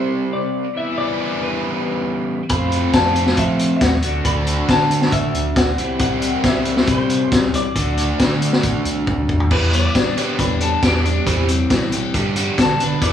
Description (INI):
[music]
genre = indie rock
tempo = 137 BPM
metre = 4/4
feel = straight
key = E minor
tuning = A4 = 441 Hz
[part]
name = twelve-string electric guitar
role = melody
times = 0.0-13.1 s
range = G4 to B5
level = -24 LUFS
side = left 2 dB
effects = none
[part]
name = biting overdriven guitar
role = riff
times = 0.0-13.1 s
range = G2 to F#4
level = -23 LUFS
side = right 5 dB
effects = none
[part]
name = overdriven electric guitar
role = riff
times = 0.0-13.1 s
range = C3 to G4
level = -23 LUFS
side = left 7 dB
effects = none
[part]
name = deep dub fingered electric bass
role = bass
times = 2.5-13.1 s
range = A1 to F3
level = -23 LUFS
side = equal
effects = none
[part]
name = vintage drum kit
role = drums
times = 2.5-13.1 s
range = crash cymbal, hi-hat, kick drum, snare drum, toms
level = -19 LUFS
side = left 1 dB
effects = none
[sound]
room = moderate large studio reverb, RT60 1.3 s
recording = band playing live in one room, small room ambience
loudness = -16 LUFS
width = side -9 dB against mid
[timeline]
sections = 0.0-9.5 A section; 9.5-13.1 B section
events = drum fill 9.1-9.5; clean electric guitar solo 9.5-13.1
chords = 0.0 Cadd9; 0.8 Em7; 2.5 F; 4.0 Dadd9; 5.8 C; 7.8 D; 9.5 Em7; 11.3 Cmaj7/E; 12.1 Gmaj7